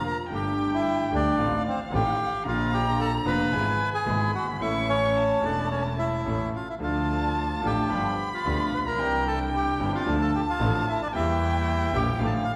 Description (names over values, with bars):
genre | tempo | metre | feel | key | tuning
tango | 111 BPM | 4/4 | rubato | D minor | A4 = 445 Hz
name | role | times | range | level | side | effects
bandoneon | melody | 0.0-12.5 s | C4 to B5 | -30 LUFS | equal | none
dark violin | second line | 0.0-12.6 s | F5 to C#6 | -34 LUFS | equal | none
bright concert grand piano | accompaniment | 0.3-12.4 s | E1 to A4 | -33 LUFS | equal | none
muted studio string section | stabs | 0.3-12.4 s | G3 to G4 | -38 LUFS | equal | none
clear double bass | bass | 0.3-12.4 s | E1 to E2 | -32 LUFS | equal | none
room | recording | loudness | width
wet recital hall reverb, RT60 1.4 s | recorded in a church or concert hall | -26 LUFS | mono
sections
0.0-12.6 A section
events
none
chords
0.3 Gsus2; 1.4 F7/A; 2.5 Bb; 3.5 E/G#; 4.6 A; 6.8 Dm; 7.9 G7; 9.0 Cadd9; 10.1 Dm; 11.1 Edim